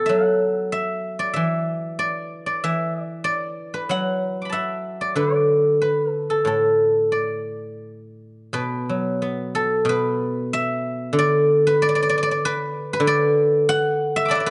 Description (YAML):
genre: chinese traditional, Chinese solo plucked strings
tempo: 94 BPM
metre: 4/4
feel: rubato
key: D gong mode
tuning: A4 = 440 Hz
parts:
  - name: guzheng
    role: solo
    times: 0.0-14.5 s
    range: A2 to D6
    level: -22 LUFS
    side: equal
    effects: none
room: moderate recital hall reverb, RT60 1.6 s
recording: dark, warm production, nothing above 11.0 kHz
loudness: -22 LUFS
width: mono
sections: 0.0-8.5 A section; 8.5-14.5 B section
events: none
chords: none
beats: 0.10 | 0.75 1.38 2.02 2.66 | 3.29 3.92 4.55 5.18 | 5.82 6.47 7.13 7.84 | 8.55 9.21 9.87 10.51 | 11.14 11.78 12.40 13.03 | 13.64 14.28